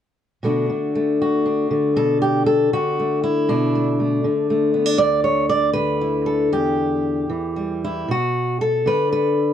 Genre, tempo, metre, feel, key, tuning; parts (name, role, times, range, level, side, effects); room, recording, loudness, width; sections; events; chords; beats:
folk, solo fingerstyle acoustic guitar; 118 BPM; 3/4; rubato; A4 = 440 Hz
fingerpicked steel-string acoustic guitar; solo; 0.4-9.5 s; D2 to D5; -17 LUFS; left 1 dB
light reverb; worn, warbling old tape, cassette tape, warbly pitch drift; -17 LUFS; side -9 dB against mid
0.4-2.0 A section; 2.0-9.5 B section
0.4 Bm7; 5.0 Dsus2; 6.5 Em7; 8.1 Bm7
| 0.42 0.94 1.45 | 1.96 2.47 2.98 | 3.49 3.99 4.48 | 4.98 5.50 6.00 | 6.51 7.04 7.56 | 8.08 8.60 9.11